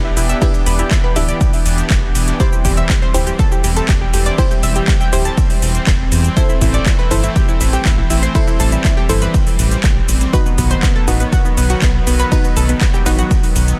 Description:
progressive house; 121 BPM; 4/4; straight; E minor; A4 = 439 Hz
lush unison pad; sustained chords; 0.0-13.8 s; D#3 to G4; -25 LUFS; equal; chorus, sidechain pumping
analog pluck; arpeggios; 0.0-13.8 s; B3 to A5; -25 LUFS; equal; chorus, sidechain pumping, digital delay
unison pluck; stabs; 0.0-13.8 s; D4 to E5; -26 LUFS; equal; sidechain pumping, digital delay
round analog bass; bass; 0.0-13.7 s; D1 to E2; -19 LUFS; equal; sidechain pumping
dusty soul sampler-style drum kit; drums; 0.2-13.8 s; hi-hat, ride cymbal, snare drum; -34 LUFS; equal
house drum kit; drums; 0.2-13.8 s; cabasa, handclaps, hi-hat; -25 LUFS; equal; overdrive
electronic kick drum; drums; 0.4-13.4 s; -18 LUFS; equal; overdrive
digital ambience; dense, heavily limited modern master; -15 LUFS; mono
0.0-13.8 A section
0.0 Em7; 2.4 C; 6.4 Am; 10.3 B

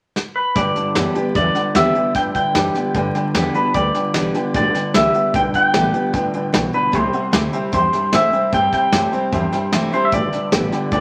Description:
rockabilly; 151 BPM; 4/4; straight; G major; A4 = 442 Hz
soft brush drum kit; drums; 0.2-11.0 s; hi-hat, kick drum, snare drum; -24 LUFS; equal
clean electric guitar; melody; 0.4-11.0 s; B4 to G5; -21 LUFS; equal; spring reverb
picked steel-string acoustic guitar; accompaniment; 0.6-11.0 s; G2 to G4; -27 LUFS; equal
tack piano; accompaniment; 0.6-11.0 s; B4 to A5; -29 LUFS; equal
electric guitar through a small old amp; riff; 0.6-11.0 s; G2 to A3; -26 LUFS; equal
upright bass; bass; 0.6-11.0 s; G1 to Ab2; -28 LUFS; equal
wet studio reverb, RT60 0.8 s; vinyl crackle; -18 LUFS; mono
0.6-11.0 A section
drum fill 0.2-0.6
0.0 N.C.; 0.6 G; 6.9 C; 10.1 G

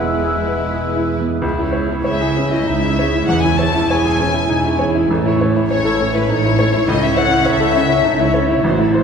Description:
classical, romantic movement for piano and orchestra; 100 BPM; 3/4; uneven beats, rubato; C# minor; A4 = 439 Hz
clear baby grand piano; melody; 0.0-9.0 s; A1 to C#5; -17 LUFS; equal
warm chamber violin section; melody; 0.0-8.3 s; B4 to A5; -22 LUFS; left 6 dB
dark cor anglais; second line; 0.0-1.0 s; E5; -29 LUFS; right 2 dB
mellow hollow silver concert flute; second line; 0.0-1.1 s; E6; -29 LUFS; left 1 dB
warm chamber violin section; second line; 0.0-8.3 s; E4 to A5; -24 LUFS; left 2 dB
warm clarinet; second line; 0.0-1.1 s; B4; -31 LUFS; left 4 dB
mellow bassoon; accompaniment; 0.0-1.1 s; G#3; -31 LUFS; right 2 dB
warm chamber viola section; accompaniment; 0.0-9.0 s; G#3 to C#5; -25 LUFS; right 1 dB
mellow French horn section; sustained chords; 0.0-1.1 s; E4; -34 LUFS; equal
dark chamber cello section; bass; 0.0-9.0 s; C#2 to C#3; -24 LUFS; right 3 dB
dark symphonic double bass section; bass; 0.0-9.0 s; E1 to C#2; -23 LUFS; right 1 dB
wet cathedral reverb, RT60 4.6 s; recorded in a church or concert hall; -14 LUFS; side -6 dB against mid
0.0-1.4 A section; 1.4-9.0 B section
0.0 E; 1.4 C#m; 3.3 C#m/E; 5.1 A; 6.9 A/C#

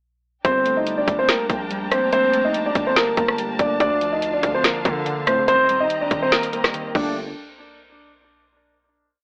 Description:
hip hop, trap; 143 BPM; 4/4; half-time; G minor; A4 = 440 Hz
dark concert grand piano; melody; 0.4-7.1 s; Bb3 to Eb5; -22 LUFS; equal; low-pass filter, tape echo
warbly lo-fi synth keys; accompaniment; 0.4-7.2 s; D3 to D4; -33 LUFS; equal; chorus, phaser, low-pass filter
warm studio string section; sustained chords; 0.4-7.1 s; Bb3 to Bb5; -33 LUFS; equal
distorted 808-style bass; bass; 0.4-7.3 s; Eb1 to D3; -33 LUFS; equal; distortion
trap drum kit; drums; 0.4-7.1 s; crash cymbal, hi-hat, kick drum, rim click, snare drum; -24 LUFS; equal
light reverb; AM radio sound; -20 LUFS; mono
0.4-7.2 hook; 7.2-8.8 final hit
break 6.3-7.2
0.4 Gmadd9; 3.8 Dm; 5.5 Eb6; 7.0 Gmadd9; 7.2 N.C.

